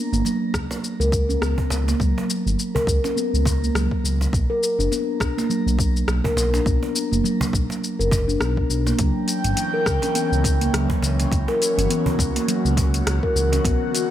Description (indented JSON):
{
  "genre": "organic downtempo",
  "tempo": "103 BPM",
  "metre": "4/4",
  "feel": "swing 57% on 16ths",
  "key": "unclear",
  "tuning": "A4 = 440 Hz",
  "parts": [
    { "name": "steel tongue drum", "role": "arpeggios", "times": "0.1-13.8 s", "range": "F#3 to A#4", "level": "-23 LUFS", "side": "equal", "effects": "digital delay, shimmer reverb" },
    { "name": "smooth gliding synth bass", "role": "bass", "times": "0.1-13.8 s", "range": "F#1 to C#2", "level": "-22 LUFS", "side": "equal", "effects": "sidechain pumping" },
    { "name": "deep house drum kit", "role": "drums", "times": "0.1-14.1 s", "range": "hi-hat, rim click, shaker", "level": "-28 LUFS", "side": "left 2 dB", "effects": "overdrive" },
    { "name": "cajon", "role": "percussion", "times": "0.2-13.6 s", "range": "none", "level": "-30 LUFS", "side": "right 2 dB", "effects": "none" },
    { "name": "electronic kick drum", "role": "drums", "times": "0.5-13.8 s", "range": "none", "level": "-24 LUFS", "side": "equal", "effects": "overdrive" },
    { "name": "airy breathy pad", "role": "sustained chords", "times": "9.0-14.1 s", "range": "D3 to G5", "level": "-26 LUFS", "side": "equal", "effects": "chorus, phaser, sidechain pumping, shimmer reverb" }
  ],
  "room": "light reverb",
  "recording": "none",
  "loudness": "-19 LUFS",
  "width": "side -12 dB against mid",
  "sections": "0.0-14.1 A section",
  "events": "none",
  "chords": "0.0 N.C.; 4.3 B5; 9.0 C#dim"
}